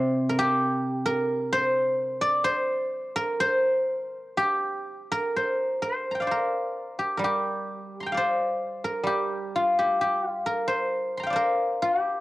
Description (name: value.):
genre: chinese traditional, Chinese solo plucked strings.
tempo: 60-68 BPM.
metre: 4/4.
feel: rubato.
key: C shang mode.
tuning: A4 = 439 Hz.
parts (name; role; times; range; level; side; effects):
guzheng; solo; 0.0-12.2 s; C3 to C6; -24 LUFS; equal; cassette tape.
room: light reverb, small room ambience.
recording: home recording on cassette.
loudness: -24 LUFS.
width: side -17 dB against mid.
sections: 0.0-5.3 A section; 5.3-12.2 B section.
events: none.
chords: none.